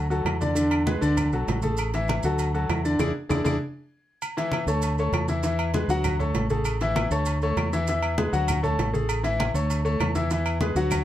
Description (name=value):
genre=latin, salsa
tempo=197 BPM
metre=4/4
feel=straight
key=unclear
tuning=A4 = 442 Hz
part: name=bright grand piano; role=accompaniment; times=0.0-11.0 s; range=D3 to F#5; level=-26 LUFS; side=left 1 dB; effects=none
part: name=fingered electric bass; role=bass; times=0.0-11.0 s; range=A1 to E2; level=-26 LUFS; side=equal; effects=none
part: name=congas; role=percussion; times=0.1-11.0 s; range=none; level=-31 LUFS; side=left 1 dB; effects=none
part: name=maracas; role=percussion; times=0.1-11.0 s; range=none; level=-40 LUFS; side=right 5 dB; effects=none
part: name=claves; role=percussion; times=0.3-11.0 s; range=none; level=-38 LUFS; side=left 3 dB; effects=none
part: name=timbales and agogo bells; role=percussion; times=0.3-11.0 s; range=none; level=-33 LUFS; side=right 4 dB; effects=none
room=moderate studio reverb, RT60 0.5 s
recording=dark, warm production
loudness=-22 LUFS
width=side -12 dB against mid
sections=0.0-4.2 A section; 4.2-11.0 A section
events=band accent 3.0-4.2; drum fill 3.8-4.2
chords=0.0 D; 0.6 E7; 1.2 D; 1.8 A5; 2.4 D; 3.0 E7; 3.6 N.C.; 4.2 D5; 5.4 E7; 6.0 Dmaj7; 6.7 Amaj7; 7.3 D5; 7.9 E7; 8.5 Dmaj7; 9.1 Amaj7; 9.7 D5; 10.3 E7